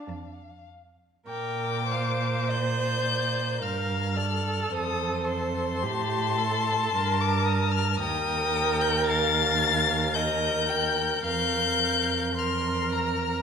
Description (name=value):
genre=classical, slow romantic movement for string quartet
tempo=54 BPM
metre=3/4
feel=uneven beats, rubato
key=Bb major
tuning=A4 = 440 Hz
part: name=warm violin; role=melody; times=0.0-13.4 s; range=F5 to A6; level=-28 LUFS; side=left 8 dB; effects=none
part: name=warm viola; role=accompaniment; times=0.0-13.4 s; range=G4 to C5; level=-30 LUFS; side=right 2 dB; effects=none
part: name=warm violin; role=second line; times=0.1-13.4 s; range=C5 to C6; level=-32 LUFS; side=left 3 dB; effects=none
part: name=warm cello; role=bass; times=0.1-13.4 s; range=Eb2 to Bb2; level=-29 LUFS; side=right 3 dB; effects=none
room=wet recital hall reverb, RT60 1.4 s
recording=minimal, uncompressed stereo recording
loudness=-24 LUFS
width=side -6 dB against mid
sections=0.0-1.3 A section; 1.3-13.4 B section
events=none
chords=0.1 F; 1.3 Bb; 4.7 F; 6.9 Gm; 8.0 Ebadd9; 11.3 Bb5/F